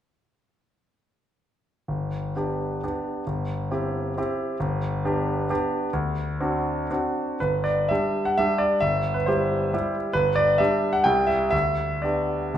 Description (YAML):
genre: classical, romantic triple-time dance for piano with dotted rhythms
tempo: 110-148 BPM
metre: 3/4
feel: rubato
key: G major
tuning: A4 = 445 Hz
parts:
  - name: clear concert grand piano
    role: solo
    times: 1.9-12.6 s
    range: G1 to G5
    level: -22 LUFS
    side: equal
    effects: none
room: wet recital hall reverb, RT60 1.5 s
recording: minimal, uncompressed stereo recording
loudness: -22 LUFS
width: side -10 dB against mid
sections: 1.9-7.4 A section; 7.4-12.6 B section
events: none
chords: 1.9 G; 3.3 C/G; 4.6 G; 5.9 D7; 7.4 G5; 8.8 C/G; 10.2 G5; 11.1 C; 11.5 G/D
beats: | 1.88 2.36 2.84 | 3.28 3.72 4.18 | 4.61 5.06 5.50 | 5.93 6.40 6.90 | 7.42 7.91 8.39 | 8.82 9.28 9.74 | 10.16 10.60 11.06 | 11.54 12.05 12.55